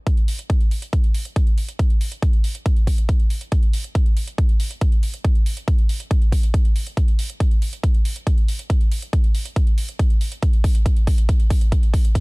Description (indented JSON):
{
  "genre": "trance",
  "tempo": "139 BPM",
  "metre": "4/4",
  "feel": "straight",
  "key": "none",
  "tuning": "none",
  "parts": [
    { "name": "electronic hi-hat", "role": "drums", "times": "0.1-12.2 s", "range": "none", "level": "-36 LUFS", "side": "right 2 dB", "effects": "overdrive" },
    { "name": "electronic kick drum", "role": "drums", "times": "0.1-12.2 s", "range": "none", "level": "-17 LUFS", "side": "equal", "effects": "overdrive" }
  ],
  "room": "digital ambience",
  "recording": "dark, warm production",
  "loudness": "-17 LUFS",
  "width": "side -31 dB against mid",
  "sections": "0.1-12.2 A section",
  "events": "build-up 0.1-12.2; drum fill 7.0-12.2",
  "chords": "none",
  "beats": "| 0.07 0.50 0.93 1.36 | 1.79 2.23 2.66 3.09 | 3.52 3.95 4.38 4.82 | 5.25 5.68 6.11 6.54 | 6.97 7.41 7.84 8.27 | 8.70 9.13 9.56 9.99 | 10.43 10.86 11.29 11.72 | 12.15"
}